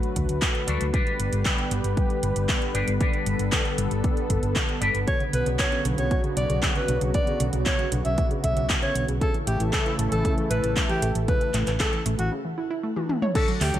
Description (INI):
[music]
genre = italo disco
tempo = 116 BPM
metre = 4/4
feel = straight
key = unclear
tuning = A4 = 440 Hz
[part]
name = warm analog pad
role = sustained chords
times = 0.0-13.8 s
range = C#3 to B4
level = -30 LUFS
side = equal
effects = chorus, shimmer reverb
[part]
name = electric guitar with an envelope filter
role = stabs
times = 0.0-5.0, 13.3-13.8 s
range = B2 to D5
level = -32 LUFS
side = left 2 dB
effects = analog chorus, shimmer reverb
[part]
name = house drum kit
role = drums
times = 0.0-13.8 s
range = crash cymbal, handclaps, hi-hat, toms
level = -29 LUFS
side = equal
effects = gated reverb
[part]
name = hollow-body short-scale fingered electric bass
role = bass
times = 0.2-13.8 s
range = G1 to D2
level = -26 LUFS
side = equal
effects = none
[part]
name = electronic kick drum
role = drums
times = 0.2-13.5 s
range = none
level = -26 LUFS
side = equal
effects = none
[part]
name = breathy alto saxophone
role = melody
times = 5.1-13.8 s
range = F#4 to E5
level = -28 LUFS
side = equal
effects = ping-pong delay, shimmer reverb
[part]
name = analog pluck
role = arpeggios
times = 5.1-13.8 s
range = B2 to C#5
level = -32 LUFS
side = right 2 dB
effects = chorus, ping-pong delay, shimmer reverb
[sound]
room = moderate plate reverb, RT60 1.4 s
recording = none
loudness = -22 LUFS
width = side -12 dB against mid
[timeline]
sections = 0.0-13.4 A section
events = break 12.3-13.4; drum fill 13.0-13.4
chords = 0.0 D; 0.9 G; 5.1 Bmadd9; 9.2 A